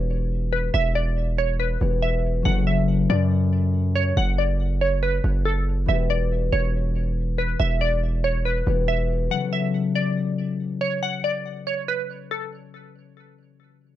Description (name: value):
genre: hip hop, trap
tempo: 140 BPM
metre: 4/4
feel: half-time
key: F# phrygian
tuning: A4 = 440 Hz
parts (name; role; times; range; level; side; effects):
- glassy wavetable pluck; melody; 0.0-12.5 s; A4 to F#5; -26 LUFS; right 1 dB; chorus
- concert harp; accompaniment; 0.0-12.8 s; C#3 to A4; -27 LUFS; left 6 dB; none
- distorted 808-style bass; bass; 0.0-9.3 s; E1 to F#2; -22 LUFS; equal; distortion
room: little or no reverb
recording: dark, warm production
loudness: -20 LUFS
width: side -13 dB against mid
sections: 0.0-9.3 A section; 9.3-12.7 B section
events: none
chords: 0.0 Em; 2.5 F#m; 5.9 Em; 9.3 F#m